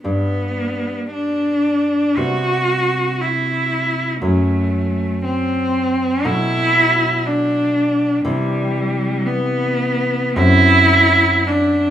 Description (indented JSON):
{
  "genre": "romantic duo for cello and classical guitar",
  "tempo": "51-61 BPM",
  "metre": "4/4",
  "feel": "rubato",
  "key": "unclear",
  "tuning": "A4 = 440 Hz",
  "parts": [
    { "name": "rich cello", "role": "melody", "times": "0.0-11.9 s", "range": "G3 to F#4", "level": "-16 LUFS", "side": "equal", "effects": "none" },
    { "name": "nylon-string guitar", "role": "accompaniment", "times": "0.0-11.9 s", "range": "F#2 to D4", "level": "-20 LUFS", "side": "equal", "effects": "none" }
  ],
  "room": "light reverb",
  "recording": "rough home demo mix, small room ambience",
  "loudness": "-15 LUFS",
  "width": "side -10 dB against mid",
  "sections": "0.0-11.9 A section",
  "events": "none",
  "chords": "0.0 G; 2.2 Cmaj7; 4.2 F#dim; 6.2 Bm7; 8.2 Cmaj7; 10.4 D7/F#",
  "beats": "| 0.05 1.13 2.17 3.20 | 4.22 5.24 6.25 7.25 | 8.25 9.25 10.37 11.45"
}